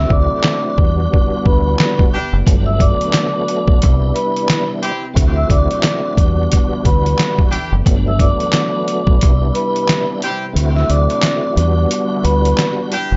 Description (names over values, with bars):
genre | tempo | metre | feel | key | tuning
hip hop, boom-bap hip-hop | 89 BPM | 4/4 | swing 59% on 16ths | unclear | A4 = 436 Hz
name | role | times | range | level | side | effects
vibraphone with soft mallets | melody | 0.0-12.7 s | B4 to E6 | -22 LUFS | equal | none
tonewheel organ | accompaniment | 0.0-13.0 s | F#3 to F#4 | -24 LUFS | equal | overdrive, chorus vibrato, fast rotary speaker, cassette tape
dark analog pad | sustained chords | 0.1-13.2 s | C3 to B4 | -30 LUFS | equal | none
deep dub fingered electric bass | bass | 0.0-13.2 s | F#1 to E2 | -18 LUFS | equal | none
trip hop sampler-style drum kit | drums | 0.1-13.1 s | handclaps, hi-hat, kick drum, snare drum | -18 LUFS | equal | none
warm horn section | stabs | 2.1-13.1 s | C4 to G4 | -26 LUFS | equal | tape echo
room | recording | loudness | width
little or no reverb | dark, warm production, nothing above 7.7 kHz | -15 LUFS | mono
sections
0.0-13.2 A section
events
break 0.0-2.5; kick muted 10.6-13.2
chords
0.0 D7; 0.8 Em7; 2.5 Gmaj7; 3.8 Cmaj7; 5.2 D7; 6.2 Em7; 7.9 Gmaj7; 9.2 Cmaj7; 10.6 D7; 11.6 Em7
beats
0.45 1.12 1.79 | 2.47 3.14 3.81 4.49 | 5.16 5.84 6.51 7.19 | 7.86 8.53 9.21 9.88 | 10.56 11.23 11.90 12.58